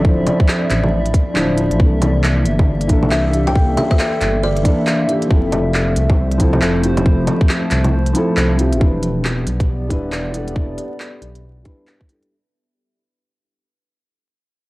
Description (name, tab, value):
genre	future garage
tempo	137 BPM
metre	4/4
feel	swing 61% on 16ths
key	unclear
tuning	A4 = 440 Hz
part	felt-muted upright piano	accompaniment	0.0-12.3 s	E3 to C5	-20 LUFS	left 1 dB	sidechain pumping, low-pass filter, cassette tape, tape echo
part	warbly tape-like pad	sustained chords	0.0-12.3 s	F3 to E5	-24 LUFS	right 1 dB	chorus, built-in reverb, sidechain pumping, cassette tape
part	dark detuned saw bass	bass	0.0-11.6 s	D1 to C2	-19 LUFS	equal	sidechain pumping
part	electronic kick drum	drums	0.0-12.1 s	none	-15 LUFS	equal	overdrive, cassette tape
part	organic electronic drum kit	drums	0.3-12.3 s	bongos, handclaps, hi-hat	-22 LUFS	equal	overdrive, cassette tape
part	buzzing kalimba	melody	3.1-5.1 s	D5 to G5	-23 LUFS	left 1 dB	cassette tape, tape echo
room	light reverb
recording	home recording on cassette, vinyl crackle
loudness	-14 LUFS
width	side -20 dB against mid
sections	0.0-8.8 A section; 8.8-12.3 B section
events	kick drops out 7.9-8.8; fade-out 8.8-12.3; filter sweep on felt piano 8.8-12.3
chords	0.0 Dm9; 1.8 C13; 5.3 Fmaj7; 8.8 Em7